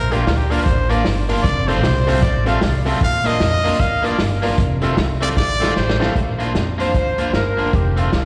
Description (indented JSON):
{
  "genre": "ska",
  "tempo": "153 BPM",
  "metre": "4/4",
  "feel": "swing 61% on 8ths",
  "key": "Bb major",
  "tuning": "A4 = 441 Hz",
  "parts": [
    { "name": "clear trumpet", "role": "melody", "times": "0.0-6.1 s", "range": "F4 to F5", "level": "-25 LUFS", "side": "equal", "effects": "tape echo, slapback echo" },
    { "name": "upright bass", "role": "bass", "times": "0.0-8.2 s", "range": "F1 to F2", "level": "-22 LUFS", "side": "equal", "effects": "none" },
    { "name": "electric guitar at the edge of break-up", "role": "accompaniment", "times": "0.1-8.1 s", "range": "A3 to F4", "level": "-26 LUFS", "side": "equal", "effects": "tape echo, slapback echo" },
    { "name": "clear upright piano", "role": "stabs", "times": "0.1-6.1 s", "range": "A3 to Bb4", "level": "-29 LUFS", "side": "equal", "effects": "tape echo, slapback echo" },
    { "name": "vintage drum kit", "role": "drums", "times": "0.1-8.2 s", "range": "hi-hat, kick drum, snare drum", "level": "-24 LUFS", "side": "equal", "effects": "tape echo" },
    { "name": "warm horn section", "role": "melody", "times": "6.8-8.2 s", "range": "A3 to C5", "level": "-23 LUFS", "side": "equal", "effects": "tape echo" }
  ],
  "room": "light reverb, studio ambience",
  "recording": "live gig heard through the venue's PA, recital hall reverb",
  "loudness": "-18 LUFS",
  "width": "mono",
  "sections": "0.0-6.2 A section; 6.2-8.2 B section",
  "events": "trumpet solo 0.0-6.2; drum fill 5.4-6.2",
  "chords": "0.0 Bb; 1.4 F; 3.0 Bb; 4.6 F; 6.2 Bb; 7.7 F"
}